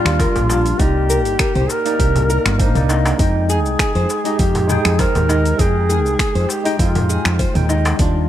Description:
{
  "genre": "organic downtempo",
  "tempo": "100 BPM",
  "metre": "4/4",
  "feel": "swing 54% on 16ths",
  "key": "F dorian",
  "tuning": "A4 = 441 Hz",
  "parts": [
    { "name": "warm duduk", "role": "melody", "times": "0.0-7.7 s", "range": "F4 to Bb4", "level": "-22 LUFS", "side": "equal", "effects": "tape echo" },
    { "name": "bright tine electric piano", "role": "accompaniment", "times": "0.0-8.3 s", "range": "G3 to G5", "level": "-23 LUFS", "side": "equal", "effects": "medium stereo tremolo, sidechain pumping, tape echo" },
    { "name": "nylon-string guitar", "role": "arpeggios", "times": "0.0-8.3 s", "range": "D4 to C5", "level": "-25 LUFS", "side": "left 1 dB", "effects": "tape echo" },
    { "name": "woody fretless electric bass", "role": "bass", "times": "0.1-8.3 s", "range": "G1 to F2", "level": "-18 LUFS", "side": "equal", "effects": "sidechain pumping" },
    { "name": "deep house drum kit", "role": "drums", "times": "0.1-8.1 s", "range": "finger snaps, hi-hat, shaker, toms", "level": "-24 LUFS", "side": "equal", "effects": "overdrive" },
    { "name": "darbuka", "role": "percussion", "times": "0.1-8.0 s", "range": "none", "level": "-26 LUFS", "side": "left 1 dB", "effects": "none" },
    { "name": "electronic kick drum", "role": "drums", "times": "0.2-8.1 s", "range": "none", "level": "-19 LUFS", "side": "equal", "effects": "overdrive" }
  ],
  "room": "light reverb, digital ambience",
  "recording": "none",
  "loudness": "-14 LUFS",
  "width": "side -12 dB against mid",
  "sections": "0.0-8.3 A section",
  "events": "none",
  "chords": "0.0 Ebmaj7; 0.8 Cm7; 3.2 Fm7"
}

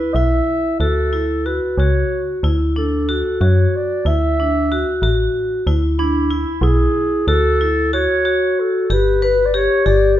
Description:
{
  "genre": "contemporary instrumental, chamber music in an uneven meter",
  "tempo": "186 BPM (eighths)",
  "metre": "5/8",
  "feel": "straight",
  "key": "unclear",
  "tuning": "A4 = 440 Hz",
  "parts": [
    { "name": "mellow clarinet", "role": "melody", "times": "0.0-10.2 s", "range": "E4 to E5", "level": "-20 LUFS", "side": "right 2 dB", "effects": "none" },
    { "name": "vibraphone with hard mallets", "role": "arpeggios", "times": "0.0-10.2 s", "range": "D4 to B4", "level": "-18 LUFS", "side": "left 2 dB", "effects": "none" },
    { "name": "metallic FM bass", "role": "bass", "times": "0.1-10.2 s", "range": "G1 to F#2", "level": "-19 LUFS", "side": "equal", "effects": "none" }
  ],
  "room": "moderate recital hall reverb, RT60 1.5 s",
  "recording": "dark, warm production",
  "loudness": "-15 LUFS",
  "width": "side -12 dB against mid",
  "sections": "0.0-8.9 A section; 8.9-10.2 B section",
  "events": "none",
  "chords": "0.0 E5; 0.8 F#m7/D; 2.4 Dmaj9; 4.1 D; 5.7 E7/D; 7.3 F#m7/D; 8.9 G"
}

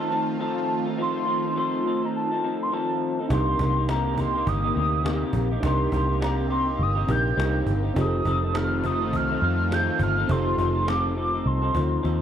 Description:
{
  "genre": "indie pop, bedroom pop",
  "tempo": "103 BPM",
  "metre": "4/4",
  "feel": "swing 60% on 16ths",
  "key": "unclear",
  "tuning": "A4 = 443 Hz",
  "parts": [
    { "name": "warbly nostalgic lead", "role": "melody", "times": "0.0-12.2 s", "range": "A5 to G6", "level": "-27 LUFS", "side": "equal", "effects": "analog chorus" },
    { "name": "electric guitar through a small old amp", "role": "accompaniment", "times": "0.0-12.2 s", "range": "C3 to A4", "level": "-28 LUFS", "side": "left 3 dB", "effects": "wide subtle chorus, vibrato effect" },
    { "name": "phased analog pad", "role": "sustained chords", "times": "0.0-12.2 s", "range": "C3 to G4", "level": "-32 LUFS", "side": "right 2 dB", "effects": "phaser, chorus" },
    { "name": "reed electric piano", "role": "accompaniment", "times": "3.3-12.2 s", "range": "C4 to Bb4", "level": "-32 LUFS", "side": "right 4 dB", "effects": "none" },
    { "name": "vintage muted picked electric bass", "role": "bass", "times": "3.3-12.2 s", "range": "F1 to F2", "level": "-25 LUFS", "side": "equal", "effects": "none" },
    { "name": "cajon", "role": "drums", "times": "3.3-12.2 s", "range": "none", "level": "-33 LUFS", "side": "right 1 dB", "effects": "none" }
  ],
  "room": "little or no reverb",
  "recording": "none",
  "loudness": "-22 LUFS",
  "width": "side -9 dB against mid",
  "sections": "0.0-12.2 A section",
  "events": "drum fill 12.0",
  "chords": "0.0 F7; 3.3 Cm7; 8.0 F7"
}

